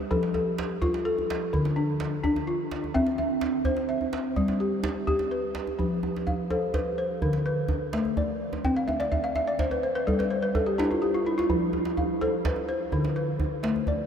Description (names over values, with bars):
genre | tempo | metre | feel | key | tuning
west african traditional, West African string and xylophone music | 84 BPM (dotted quarters) | 12/8 | straight | F lydian | A4 = 440 Hz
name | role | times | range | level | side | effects
balafon | arpeggios | 0.0-14.1 s | D3 to G5 | -25 LUFS | left 1 dB | none
djembe | percussion | 0.1-14.0 s | none | -32 LUFS | right 2 dB | none
room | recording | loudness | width
wet huge ambient reverb, RT60 8.0 s | dreamy mix soaked in reverb | -24 LUFS | side -8 dB against mid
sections
0.0-5.8 A section; 5.8-14.1 B section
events
balafon fill 8.6-11.5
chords
0.1 F; 1.5 Dm; 2.9 C; 4.4 G; 5.8 F; 7.2 D5; 8.6 C; 10.1 G5; 11.5 F; 12.9 D5